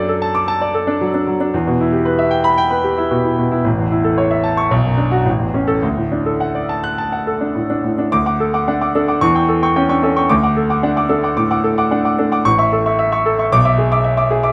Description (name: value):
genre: classical, virtuoso piano study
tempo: 102-116 BPM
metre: 4/4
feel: rubato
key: D major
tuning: A4 = 440 Hz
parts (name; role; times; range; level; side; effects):
- clear concert grand piano; solo; 0.0-14.5 s; A1 to F#6; -16 LUFS; equal; none
room: moderate recital hall reverb, RT60 1.4 s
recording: close, detailed microphones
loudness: -16 LUFS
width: mono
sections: 0.0-8.1 A section; 8.1-14.5 B section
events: none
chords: 0.0 D/F#; 1.5 Em; 3.6 A; 4.7 Bm; 5.3 A; 5.8 D; 9.2 A7/E; 10.3 D; 12.4 A; 13.5 E7/B